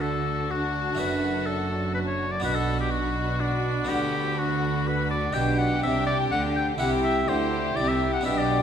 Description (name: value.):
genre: classical, baroque-style concerto movement with solo episodes.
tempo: 124 BPM.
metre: 3/4.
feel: straight.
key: unclear.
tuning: A4 = 439 Hz.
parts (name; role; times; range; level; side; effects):
clear oboe; melody; 0.0-8.6 s; D4 to G5; -28 LUFS; left 2 dB; none.
rich chamber violin section; melody; 0.0-8.6 s; G5 to B5; -40 LUFS; left 5 dB; none.
rich studio violin section; second line; 0.0-8.6 s; F#4 to G4; -32 LUFS; left 4 dB; none.
harpsichord; accompaniment; 0.0-8.6 s; F#2 to G4; -30 LUFS; left 1 dB; none.
warm studio viola section; accompaniment; 0.0-8.6 s; D4 to E4; -32 LUFS; right 3 dB; none.
rich studio cello section; bass; 0.0-8.6 s; F#2 to D3; -30 LUFS; right 2 dB; none.
rich symphonic double bass section; bass; 0.0-8.6 s; F#1 to D2; -32 LUFS; right 3 dB; none.
room: wet recital hall reverb, RT60 1.7 s.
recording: minimal, uncompressed stereo recording.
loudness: -23 LUFS.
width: side -8 dB against mid.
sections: 0.0-8.6 A section.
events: none.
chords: 0.0 D; 1.0 D/F#; 2.4 Bm; 3.9 Bm/D; 5.4 G/B; 6.8 C.